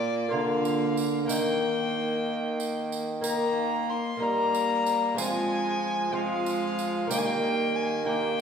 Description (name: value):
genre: classical, renaissance-style consort dance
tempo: 62 BPM (dotted quarters)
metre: 6/8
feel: straight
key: unclear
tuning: A4 = 440 Hz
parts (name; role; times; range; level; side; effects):
- warm violin; melody; 0.0-8.4 s; D5 to C6; -30 LUFS; left 2 dB; none
- lute; accompaniment; 0.0-8.4 s; Bb2 to Bb4; -30 LUFS; equal; none
- warm viola; accompaniment; 0.0-8.4 s; Ab3 to Bb3; -32 LUFS; equal; none
- warm bassoon; bass; 0.0-8.4 s; Bb2 to G3; -31 LUFS; right 2 dB; none
- tambourine; percussion; 0.7-7.4 s; none; -38 LUFS; right 6 dB; none
room: wet recital hall reverb, RT60 1.6 s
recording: recorded in a church or concert hall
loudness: -25 LUFS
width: side -7 dB against mid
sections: 0.0-8.4 A section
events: none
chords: 0.0 Bb; 1.3 Eb; 5.2 Fm; 7.1 Eb